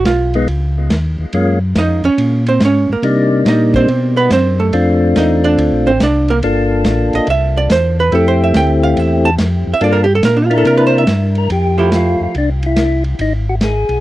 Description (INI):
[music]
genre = soul jazz organ trio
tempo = 142 BPM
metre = 4/4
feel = swing 66% on 8ths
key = F major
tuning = A4 = 442 Hz
[part]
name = archtop guitar, miked and amplified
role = accompaniment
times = 0.0-12.3 s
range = F3 to A5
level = -15 LUFS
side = right 3 dB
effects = none
[part]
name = mellow tonewheel organ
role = bass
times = 0.0-14.0 s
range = G1 to C3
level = -15 LUFS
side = equal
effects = slow rotary speaker
[part]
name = vintage drum kit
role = drums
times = 0.1-14.0 s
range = hi-hat, kick drum, ride cymbal, snare drum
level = -20 LUFS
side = equal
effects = none
[part]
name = percussive tonewheel organ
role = melody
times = 0.4-14.0 s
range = G3 to Bb4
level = -16 LUFS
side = left 2 dB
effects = slow rotary speaker, tape echo
[sound]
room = light reverb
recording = dry, close 1970s-style studio recording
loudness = -11 LUFS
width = side -15 dB against mid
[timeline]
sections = 0.0-11.5 A section; 11.5-14.0 B section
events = hollow-body jazz guitar solo 0.0-11.5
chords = 0.5 Dbadd9; 1.3 Gbmaj9; 3.0 Cm9; 3.9 B5; 4.7 Bbmaj9; 6.4 Gm9; 7.3 C; 8.1 Fmaj9; 9.8 Gm7; 10.7 C9; 11.5 Fmaj9; 13.2 Abm